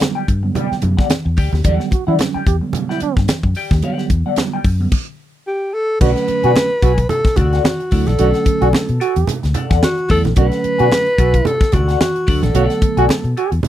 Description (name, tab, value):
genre	funk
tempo	110 BPM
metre	4/4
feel	swing 56% on 16ths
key	B minor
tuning	A4 = 440 Hz
part	clean electric guitar	accompaniment	0.0-13.7 s	G4 to G#5	-23 LUFS	left 6 dB	wah, tube saturation, phaser
part	mellow tine electric piano	stabs	0.0-13.2 s	D3 to E4	-22 LUFS	right 5 dB	slow stereo tremolo
part	crisp fusion drum kit	drums	0.0-13.7 s	crash cymbal, hi-hat, kick drum, snare drum	-18 LUFS	equal	none
part	congas	percussion	0.0-13.7 s	none	-24 LUFS	right 3 dB	none
part	fingered electric bass	bass	0.3-13.7 s	A#1 to E3	-17 LUFS	left 1 dB	none
part	mellow trombone	second line	1.9-13.5 s	D4 to G4	-19 LUFS	right 10 dB	none
part	breathy alto saxophone	melody	5.5-13.5 s	F#4 to B4	-18 LUFS	equal	none
room	little or no reverb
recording	dry, close 1970s-style studio recording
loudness	-14 LUFS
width	side -12 dB against mid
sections	0.0-6.0 A section; 6.0-13.7 B section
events	stop 4.9-6.0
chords	0.0 Em9 (rootless); 6.0 Bm7